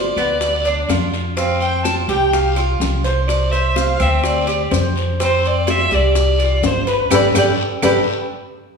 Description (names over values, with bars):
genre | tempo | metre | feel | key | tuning
latin, Cuban son and guajira | 125 BPM | 4/4 | straight | unclear | A4 = 441 Hz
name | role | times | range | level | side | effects
warm violin | melody | 0.0-8.0 s | B4 to A5 | -20 LUFS | left 1 dB | none
Cuban tres | arpeggios | 0.0-8.0 s | B3 to C5 | -19 LUFS | right 2 dB | none
upright bass | bass | 0.0-8.0 s | G1 to F2 | -20 LUFS | equal | none
bongos | percussion | 0.2-7.9 s | none | -24 LUFS | left 4 dB | none
claves | percussion | 0.2-7.9 s | none | -32 LUFS | right 7 dB | none
guiro | percussion | 0.2-7.9 s | none | -32 LUFS | left 4 dB | none
maracas | percussion | 0.2-7.9 s | none | -32 LUFS | left 5 dB | none
room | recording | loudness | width
wet recital hall reverb, RT60 1.4 s | recorded in a church or concert hall, small room ambience | -14 LUFS | side -5 dB against mid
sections
0.0-8.8 A section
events
band accent 7.1-8.8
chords
0.0 G7 (rootless); 1.4 Fsus2; 3.3 Csus2; 5.2 Fsus2; 7.1 Gadd9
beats
0.42 0.90 | 1.37 1.85 2.33 2.81 | 3.29 3.77 4.25 4.72 | 5.20 5.68 6.16 6.64 | 7.12 7.59